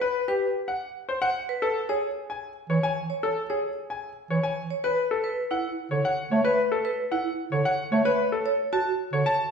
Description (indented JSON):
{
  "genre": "classical, minimalist pattern music",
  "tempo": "112 BPM",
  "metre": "3/4",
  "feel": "straight",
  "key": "B dorian",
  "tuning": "A4 = 440 Hz",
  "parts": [
    { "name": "bright concert grand piano", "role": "melody", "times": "0.0-9.4 s", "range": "G4 to A5", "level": "-26 LUFS", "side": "left 3 dB", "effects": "none" },
    { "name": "vibraphone with hard mallets", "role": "arpeggios", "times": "0.0-8.9 s", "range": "E4 to C#5", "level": "-29 LUFS", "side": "right 3 dB", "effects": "none" },
    { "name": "mellow bass clarinet", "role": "accompaniment", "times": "2.7-9.2 s", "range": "D3 to A3", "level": "-27 LUFS", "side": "right 3 dB", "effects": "none" }
  ],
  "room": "wet large studio reverb, RT60 1.3 s",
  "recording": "heard from further back in the room, nothing above 10.5 kHz",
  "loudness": "-24 LUFS",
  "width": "side -6 dB against mid",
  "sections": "0.0-4.8 A section; 4.8-9.5 B section",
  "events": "none",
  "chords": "0.0 N.C.; 1.6 Amaj7 (rootless); 4.8 Bsus2; 8.1 D (rootless)"
}